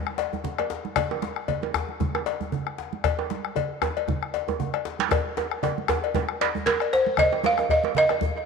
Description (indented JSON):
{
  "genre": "west african traditional, West African drum ensemble",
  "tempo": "116 BPM",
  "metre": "4/4",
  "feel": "swing 55% on 16ths",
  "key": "unclear",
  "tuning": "A4 = 440 Hz",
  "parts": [
    { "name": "bombo", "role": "percussion", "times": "0.1-8.3 s", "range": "none", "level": "-30 LUFS", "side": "left 6 dB", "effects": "none" },
    { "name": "djembe", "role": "percussion", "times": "0.1-8.4 s", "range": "none", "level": "-33 LUFS", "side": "left 6 dB", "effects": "none" },
    { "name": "cowbell", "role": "percussion", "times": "0.2-8.2 s", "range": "none", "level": "-31 LUFS", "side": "left 14 dB", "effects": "none" },
    { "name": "congas", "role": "percussion", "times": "0.3-8.4 s", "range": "none", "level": "-33 LUFS", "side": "right 8 dB", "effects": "none" },
    { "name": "djembe", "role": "percussion", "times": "0.6-8.2 s", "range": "none", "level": "-30 LUFS", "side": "right 10 dB", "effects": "none" },
    { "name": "balafon", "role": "melody", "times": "6.7-8.5 s", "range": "Bb4 to F5", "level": "-21 LUFS", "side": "right 1 dB", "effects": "tape echo" }
  ],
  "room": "moderate plate reverb, RT60 3.0 s",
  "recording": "1960s-style stereo with parts hard left and right",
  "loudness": "-23 LUFS",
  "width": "side -5 dB against mid",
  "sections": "0.0-7.2 A section; 7.2-8.5 B section",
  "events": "drum fill 5.1-7.2",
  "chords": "none",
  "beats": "0.45 | 0.97 1.49 2.01 2.53 | 3.04 3.56 4.08 4.60 | 5.12 5.63 6.15 6.67 | 7.18 7.70 8.21"
}